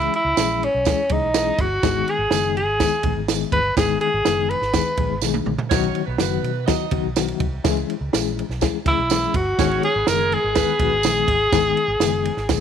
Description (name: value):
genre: uptempo 1960s-style soul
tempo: 124 BPM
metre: 4/4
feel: straight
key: G# minor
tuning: A4 = 443 Hz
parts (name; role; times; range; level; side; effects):
- breathy tenor saxophone; melody; 0.0-5.2, 8.9-12.6 s; C#4 to B4; -20 LUFS; equal; none
- reed electric piano; accompaniment; 0.0-12.6 s; D#3 to G#4; -25 LUFS; left 15 dB; fast tremolo
- vintage muted fingered electric bass; bass; 0.0-12.6 s; F#1 to B2; -27 LUFS; right 1 dB; none
- compact cocktail drum kit; drums; 0.0-12.6 s; kick drum, ride cymbal, snare drum, toms; -24 LUFS; right 4 dB; none
- tambourine; percussion; 0.4-12.6 s; none; -30 LUFS; right 16 dB; none
- mellow saxophone section; second line; 5.7-11.0 s; G#3 to D#5; -28 LUFS; right 13 dB; none
room: light reverb, small room ambience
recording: 1960s-style stereo with parts hard left and right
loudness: -18 LUFS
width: side -8 dB against mid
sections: 0.0-12.6 A section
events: drum fill 5.2-5.7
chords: 0.0 C#m; 1.8 G#m; 5.7 B; 7.6 C#m; 9.6 G#m